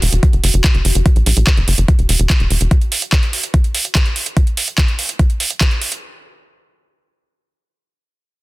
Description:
psychedelic trance; 145 BPM; 4/4; straight; A4 = 440 Hz
bubbling stepped-filter texture; sustained chords; 0.0-2.7 s; F#4; -32 LUFS; equal; chorus, built-in reverb, sidechain pumping
tight sequencer bass; bass; 0.0-2.7 s; E1 to A#1; -14 LUFS; equal
garage drum kit; drums; 0.0-6.0 s; handclaps, hi-hat; -18 LUFS; right 2 dB; overdrive
electronic kick drum; drums; 0.2-5.7 s; -13 LUFS; equal; overdrive
digital ambience; dense, heavily limited modern master; -13 LUFS; side -21 dB against mid
0.0-6.0 A section
0.0 F#5

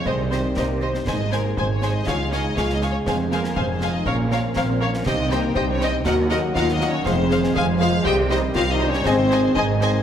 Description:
cinematic, heroic adventure film score; 120 BPM; 4/4; straight; Ab major; A4 = 440 Hz
warm symphonic violin section; melody; 0.0-10.0 s; Bb4 to Ab5; -29 LUFS; left 2 dB
clear trombone section; sustained chords; 0.0-10.0 s; C3 to C4; -29 LUFS; right 4 dB
concert harp; arpeggios; 0.0-10.0 s; Ab2 to F6; -30 LUFS; left 6 dB
dark symphonic violin section; second line; 0.1-9.9 s; C5 to Ab5; -27 LUFS; left 2 dB
rich symphonic viola section; accompaniment; 0.1-9.9 s; Gb4 to Db5; -31 LUFS; right 1 dB
mellow French horn section; sustained chords; 0.1-10.0 s; Bb3 to Ab4; -25 LUFS; left 3 dB
clear symphonic double bass section; bass; 0.1-10.0 s; F1 to Eb2; -27 LUFS; right 3 dB
dark symphonic cello section; bass; 0.1-10.0 s; Db2 to C3; -27 LUFS; right 3 dB
concert bass drum, concert snare drum and clash cymbals; drums; 0.1-9.9 s; -30 LUFS; equal
timpani; percussion; 6.1-9.8 s; Ab2 to Eb3; -33 LUFS; equal
wet recital hall reverb, RT60 1.4 s; -18 LUFS; side -9 dB against mid
0.0-10.0 A section
0.1 Cm; 1.1 Ab; 2.1 Db; 3.1 Fm; 4.1 Bbm; 5.1 Cm; 6.1 Ebm; 7.1 Fm; 8.1 Cm; 9.1 Ab

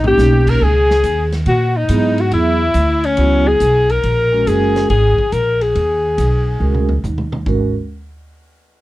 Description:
jazz, small-group swing and bop; 140 BPM; 4/4; swing 68% on 8ths; G# minor; A4 = 442 Hz
clear alto saxophone; melody; 0.0-7.0 s; C#4 to A#4; -16 LUFS; left 3 dB
clear trumpet; second line; 0.0-7.0 s; C#4 to A#4; -23 LUFS; right 3 dB
vibraphone with soft mallets; accompaniment; 0.0-7.7 s; F#3 to A#4; -19 LUFS; right 4 dB
upright bass; bass; 0.0-7.7 s; F#1 to A#2; -16 LUFS; equal
vintage drum kit; drums; 0.0-7.6 s; crash cymbal, hi-hat, kick drum, ride cymbal, snare drum, toms; -27 LUFS; equal
little or no reverb; -12 LUFS; side -17 dB against mid
0.6-7.5 A section; 7.5-8.8 B section
drum fill 0.0, 6.6-7.5
0.0 D#7; 0.6 C#m9; 2.3 E13; 4.0 F#add9; 5.7 D#7sus4; 7.5 G#9sus4

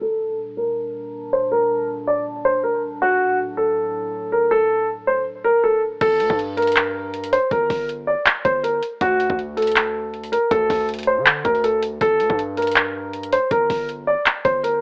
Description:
hip hop, trap; 160 BPM; 4/4; half-time; G harmonic minor; A4 = 440 Hz
dark baby grand piano; melody; 0.0-14.8 s; F#4 to D5; -21 LUFS; equal; low-pass filter, cassette tape
dark analog pad; sustained chords; 0.0-6.0 s; A2 to A5; -36 LUFS; equal; subtle chorus, low-pass filter
hard-hitting 808-style bass; bass; 6.0-14.8 s; G1 to D3; -32 LUFS; equal
trap drum kit; drums; 6.0-14.7 s; crash cymbal, handclaps, hi-hat, kick drum; -22 LUFS; equal; cassette tape
light reverb; home recording on cassette, AM radio sound; -20 LUFS; mono
0.0-6.0 A section; 6.0-14.8 B section
filter sweep 0.0-6.0
0.0 Gmadd9; 3.0 D; 6.0 Gm; 9.0 D5; 12.0 Gm

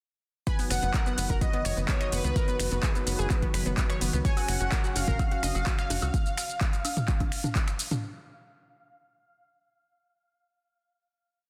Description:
progressive house; 127 BPM; 4/4; straight; A4 = 440 Hz
soft supersaw; melody; 0.5-7.5 s; B4 to G#5; -37 LUFS; equal; sidechain pumping, dub echo
warm analog pad; sustained chords; 0.5-6.1 s; C#3 to F#4; -40 LUFS; equal; chorus, sidechain pumping
analog pluck; arpeggios; 0.5-6.1 s; B3 to E#5; -39 LUFS; equal; chorus, cassette tape, sidechain pumping, digital delay
deep house drum kit; drums; 0.5-8.0 s; finger snaps, handclaps, hi-hat, shaker; -36 LUFS; equal; overdrive, sidechain pumping on hats, studio reverb, sidechain pumping on perc
electronic kick drum; drums; 0.5-7.7 s; -30 LUFS; equal; overdrive, studio reverb
tight sequencer bass; bass; 0.7-6.1 s; F#1 to C#2; -32 LUFS; equal; sidechain pumping
electronic woodblock, congas and toms; percussion; 4.4-8.0 s; -36 LUFS; equal; sidechain pumping on perc, studio reverb, sidechain pumping on toms
digital ambience; dense, heavily limited modern master; -28 LUFS; mono
0.5-8.0 drop
drop 0.5-8.0
0.5 B/F#; 4.2 F#5

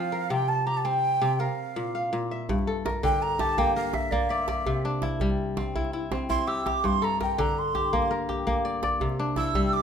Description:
west african traditional, West African string and xylophone music; 110 BPM (dotted quarters); 12/8; straight; G dorian; A4 = 440 Hz
mellow jazz flute; melody; 0.0-9.8 s; D5 to E6; -27 LUFS; right 2 dB
kora; arpeggios; 0.0-9.8 s; G2 to F5; -27 LUFS; left 2 dB
djembe; percussion; 2.5-9.7 s; -32 LUFS; right 2 dB
moderate recital hall reverb, RT60 1.5 s; minimal, uncompressed stereo recording; -24 LUFS; side -7 dB against mid
0.0-2.5 A section; 2.5-9.8 B section
flute solo 2.5-9.8
0.3 C5; 1.4 Bb5; 2.5 Gm; 4.7 C; 6.8 Gm; 9.0 C

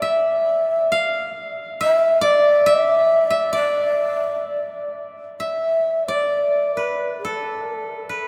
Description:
japanese traditional, Japanese chamber music; 62-70 BPM; 2/4; rubato; D kumoi; A4 = 438 Hz
breathy mellow shakuhachi; melody; 0.0-8.3 s; A4 to E5; -21 LUFS; equal
koto; second line; 0.0-8.3 s; A4 to F5; -28 LUFS; equal
wet cathedral reverb, RT60 6.6 s; in a vast, echoing space; -20 LUFS; mono
0.0-5.4 A section; 5.4-8.3 B section

